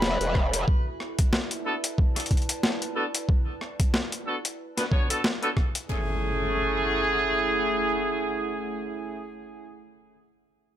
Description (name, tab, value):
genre	glitch hop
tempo	92 BPM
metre	4/4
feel	swing 57% on 16ths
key	F# minor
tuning	A4 = 440 Hz
part	growl bass	bass	0.0-0.7 s	E1	-26 LUFS	equal	chorus, tube saturation
part	boom bap sampler-style drum kit	drums	0.0-5.9 s	hi-hat, rim click, snare drum	-28 LUFS	left 1 dB	overdrive
part	downlifter and impact	sound effects	0.0-0.7, 5.9-9.6 s	none	-35 LUFS	equal	none
part	warbly tape-like pad	texture	0.0-9.3 s	A3 to A5	-36 LUFS	right 3 dB	chorus, built-in reverb, sidechain pumping
part	electronic kick drum	drums	0.4-5.7 s	none	-23 LUFS	equal	overdrive
part	clear horn section	stabs	1.7-9.3 s	A3 to C#5	-26 LUFS	right 1 dB	sidechain pumping, low-pass filter, digital delay
room	digital ambience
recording	none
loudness	-24 LUFS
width	side -11 dB against mid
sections	0.0-5.9 A section; 5.9-8.5 B section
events	fade-out on ambient pad 0.0-5.9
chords	0.0 F#m9; 0.7 E7sus4; 5.9 F#m9